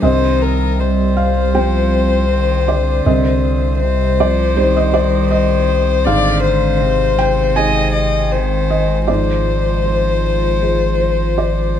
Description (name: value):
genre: neoclassical piano and strings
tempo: 79 BPM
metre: 4/4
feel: rubato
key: C minor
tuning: A4 = 440 Hz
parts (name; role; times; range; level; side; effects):
- dark violin; melody; 0.0-11.8 s; Bb4 to Eb5; -18 LUFS; left 8 dB; slapback echo
- rich cello; second line; 0.0-11.8 s; C3 to G3; -23 LUFS; right 5 dB; none
- felt-muted upright piano; accompaniment; 0.0-11.8 s; C2 to Ab5; -19 LUFS; right 2 dB; none
- hollow soft pad; sustained chords; 0.0-11.8 s; G3 to C5; -27 LUFS; equal; chorus
- punchy sub bass; bass; 0.0-11.8 s; Ab1 to C2; -18 LUFS; equal; none
room: light reverb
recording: dark, warm production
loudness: -13 LUFS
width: side -9 dB against mid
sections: 0.0-11.8 A section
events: none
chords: 0.0 Cm; 6.1 Ab; 9.1 Fm/Ab